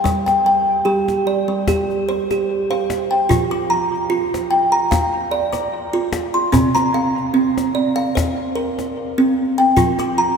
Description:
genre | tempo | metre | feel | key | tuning
world meditative, meditative tuned percussion | 74 BPM | 4/4 | swing 53% on 16ths | unclear | A4 = 440 Hz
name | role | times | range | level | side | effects
kalimba | arpeggios | 0.0-10.4 s | C3 to D6 | -16 LUFS | right 1 dB | analog delay, shimmer reverb
cajon | percussion | 0.1-10.3 s | none | -25 LUFS | left 3 dB | none
room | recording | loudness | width
wet cathedral reverb, RT60 5.6 s | dreamy mix soaked in reverb | -16 LUFS | side -6 dB against mid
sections
0.0-3.3 A section; 3.3-10.4 B section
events
none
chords
0.0 G5; 3.3 F5; 6.5 C5; 9.8 F5

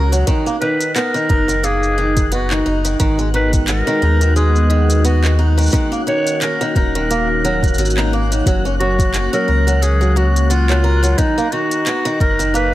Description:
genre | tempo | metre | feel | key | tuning
folktronica | 88 BPM | 4/4 | swing 56% on 16ths | unclear | A4 = 440 Hz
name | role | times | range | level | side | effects
growling clarinet | melody | 0.0-12.7 s | D#4 to C#5 | -20 LUFS | equal | ping-pong delay
warm analog pad | sustained chords | 0.0-12.7 s | D#3 to A#5 | -24 LUFS | equal | chorus
picked swing-style acoustic guitar | arpeggios | 0.0-12.7 s | D#3 to A#4 | -21 LUFS | right 1 dB | ping-pong delay
warm sub bass | bass | 0.0-12.7 s | D#1 to D#2 | -16 LUFS | equal | none
flickering grainy texture | texture | 0.0-12.7 s | F#6 | -31 LUFS | left 2 dB | built-in reverb
organic electronic drum kit | drums | 0.1-12.7 s | handclaps, hi-hat, shaker | -25 LUFS | equal | overdrive
electronic kick drum | drums | 0.3-12.4 s | none | -17 LUFS | equal | overdrive
room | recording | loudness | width
light reverb, digital ambience | none | -13 LUFS | side -15 dB against mid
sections
0.0-12.7 A section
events
none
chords
0.3 Bmaj7; 3.0 G#m7; 5.7 D#m7; 8.5 F#; 11.2 Bmaj7 (rootless)

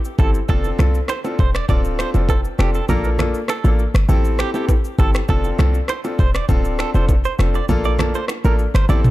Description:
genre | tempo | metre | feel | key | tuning
afrobeats | 100 BPM | 4/4 | straight | unclear | A4 = 439 Hz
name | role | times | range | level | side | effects
afro-pop drum kit | drums | 0.0-9.1 s | finger snaps, kick drum, rim click, shaker, toms | -20 LUFS | equal | none
bright grand piano | accompaniment | 0.2-9.1 s | Bb3 to A4 | -24 LUFS | left 2 dB | none
direct-recorded clean electric guitar | riff | 0.2-9.0 s | G4 to D5 | -27 LUFS | right 6 dB | tremolo, ping-pong delay
short 808-style bass | bass | 0.2-9.1 s | D1 to C2 | -18 LUFS | equal | none
congas and bongos | percussion | 0.5-9.0 s | none | -29 LUFS | right 5 dB | none
room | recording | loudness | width
little or no reverb | dark, warm production | -15 LUFS | side -17 dB against mid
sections
0.0-6.5 A section; 6.5-9.1 B section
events
none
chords
0.5 F6; 1.7 Dm7; 2.9 Bbmaj7; 4.1 Am7; 5.3 F6; 6.5 Dm7; 7.7 Bbmaj7

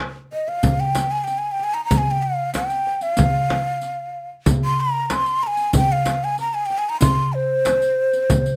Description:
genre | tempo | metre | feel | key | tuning
Arabic maqam ensemble | 94 BPM | 4/4 | straight | C minor | A4 = 440 Hz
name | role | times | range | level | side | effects
darbuka | percussion | 0.2-8.5 s | none | -24 LUFS | equal | none
breathy mellow ney | melody | 0.3-8.6 s | C5 to C6 | -23 LUFS | equal | none
frame drum | percussion | 0.6-8.4 s | none | -25 LUFS | equal | none
riq | percussion | 0.6-8.5 s | none | -32 LUFS | equal | none
room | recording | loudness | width
moderate small room ambience, RT60 0.5 s | close, detailed microphones | -21 LUFS | mono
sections
0.0-8.6 A section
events
none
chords
none

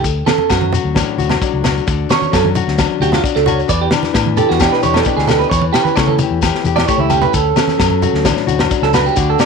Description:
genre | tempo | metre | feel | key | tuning
highlife guitar band | 131 BPM | 4/4 | straight | D major | A4 = 440 Hz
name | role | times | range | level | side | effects
nylon-string guitar | accompaniment | 0.0-9.5 s | A2 to G4 | -19 LUFS | left 13 dB | none
electric guitar at the edge of break-up | arpeggios | 0.0-9.5 s | E4 to D5 | -16 LUFS | right 11 dB | slapback echo
fingered electric bass | bass | 0.0-9.3 s | C#2 to C#3 | -19 LUFS | left 2 dB | none
tight funk drum kit | drums | 0.0-9.5 s | kick drum, snare drum | -19 LUFS | left 1 dB | none
shekere | percussion | 0.0-9.5 s | none | -25 LUFS | left 9 dB | none
agogo bells | percussion | 0.3-9.5 s | none | -24 LUFS | left 17 dB | none
congas | percussion | 0.3-9.5 s | none | -24 LUFS | right 7 dB | none
room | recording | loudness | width
light reverb, small room ambience | 1960s-style stereo with parts hard left and right | -12 LUFS | side -5 dB against mid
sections
0.0-9.5 A section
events
clean electric guitar solo 0.0-9.5; drum fill 7.0-7.3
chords
0.0 Dmaj7; 3.7 Em7; 5.5 A7/E; 7.3 Dmaj7

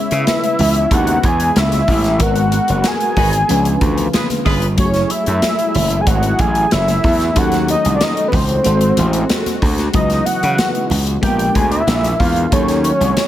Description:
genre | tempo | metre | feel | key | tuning
polished 1980s jazz-funk pop | 93 BPM | 4/4 | straight | unclear | A4 = 440 Hz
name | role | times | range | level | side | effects
fat analog lead | melody | 0.0-13.3 s | B4 to G#5 | -18 LUFS | equal | none
bell-like FM electric piano | accompaniment | 0.0-13.3 s | E#3 to B4 | -22 LUFS | left 2 dB | analog chorus
warm analog pad | sustained chords | 0.0-13.3 s | A#2 to D#5 | -25 LUFS | equal | chorus
gritty slap bass | bass | 0.1-13.1 s | F#1 to C#3 | -17 LUFS | equal | overdrive
modern studio drum kit | drums | 0.1-13.3 s | hi-hat, kick drum, snare drum | -19 LUFS | equal | gated reverb
congas | percussion | 0.3-13.3 s | none | -28 LUFS | right 2 dB | none
warm horn section | second line | 3.2-4.7 s | D#4 to B4 | -23 LUFS | equal | none
room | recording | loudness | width
studio reverb | none | -13 LUFS | side -12 dB against mid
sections
0.0-13.3 A section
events
band accent 2.2-4.8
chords
0.0 C#m7; 2.2 G#m9; 3.5 C#7b9; 4.8 F#m9; 7.4 D#m7b5; 8.7 G#7b9; 9.9 C#m11; 11.2 A#7b9; 12.5 D#m7b5

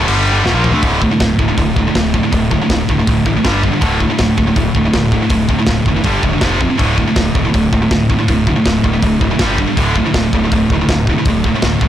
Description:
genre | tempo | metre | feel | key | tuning
heavy metal | 161 BPM | 4/4 | straight | D minor | A4 = 439 Hz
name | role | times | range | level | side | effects
heavy high-gain guitar | riff | 0.0-11.9 s | D2 to Bb3 | -14 LUFS | equal | distortion
fuzz picked electric bass | bass | 0.0-11.9 s | D1 to D2 | -18 LUFS | equal | overdrive
tight metal drum kit | drums | 0.1-11.9 s | crash cymbal, hi-hat, kick drum, snare drum, toms | -18 LUFS | equal | none
room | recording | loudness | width
light reverb | blown-out, overdriven recording, overdrive | -11 LUFS | side -11 dB against mid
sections
0.8-11.9 A section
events
drum fill 0.5-0.8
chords
0.1 G5; 0.5 Dm; 0.8 D5; 3.4 G5; 3.8 D5; 6.1 G5; 6.4 F5; 6.8 D5; 9.4 G5; 9.8 D5

